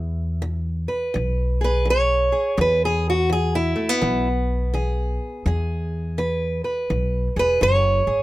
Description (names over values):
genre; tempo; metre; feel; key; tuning
acoustic country blues, solo or duo; 84 BPM; 4/4; swing 64% on 8ths; E major; A4 = 440 Hz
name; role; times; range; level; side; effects
fingerpicked old ladder-braced acoustic guitar; melody; 0.0-8.2 s; E3 to C#5; -21 LUFS; right 1 dB; none
upright bass; bass; 0.0-8.2 s; E1 to E2; -23 LUFS; equal; none
room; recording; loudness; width
light reverb; close, detailed microphones; -19 LUFS; side -17 dB against mid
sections
0.0-8.2 A section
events
steel-string acoustic guitar solo 0.0-8.2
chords
0.0 E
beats
0.44 1.16 1.88 | 2.60 3.31 4.03 4.75 | 5.47 6.18 6.90 7.62